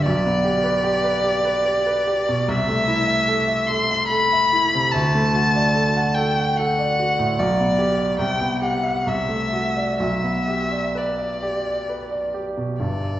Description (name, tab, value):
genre	classical, romantic duo for violin and grand piano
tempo	62-77 BPM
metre	3/4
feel	rubato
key	G major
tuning	A4 = 440 Hz
part	warm violin	melody	0.0-13.2 s	D5 to C6	-21 LUFS	left 1 dB	none
part	warm baby grand piano	accompaniment	0.0-13.2 s	G1 to F#5	-22 LUFS	right 1 dB	none
room	wet recital hall reverb, RT60 1.5 s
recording	heard from further back in the room, nothing above 7.8 kHz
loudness	-18 LUFS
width	side -13 dB against mid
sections	0.0-12.8 A section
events	none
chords	0.1 G/B; 2.5 Am/C; 4.9 D; 7.4 G/B; 8.2 Cmaj7; 9.1 D7/C; 10.0 G/B